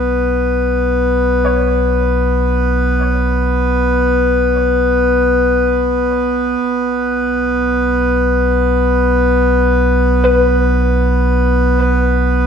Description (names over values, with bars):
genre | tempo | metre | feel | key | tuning
ambient | free time | none | none | unclear | A4 = 440 Hz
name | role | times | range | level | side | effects
warm sub bass | bass | 0.0-12.5 s | B1 | -17 LUFS | equal | none
hand-pumped harmonium | drone | 0.0-12.5 s | B3 to B4 | -14 LUFS | equal | none
soft round pluck | arpeggios | 1.4-12.5 s | B4 to C#5 | -20 LUFS | left 4 dB | ensemble chorus, cassette tape, diffuse ambient delay
room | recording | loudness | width
wet concert hall reverb, RT60 2.4 s | none | -12 LUFS | side -7 dB against mid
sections
0.0-12.5 A section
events
fade-in on synth pluck 0.0-12.5; fade-in on sub bass 0.0-12.5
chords
0.0 Bsus2; 6.6 N.C.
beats
free time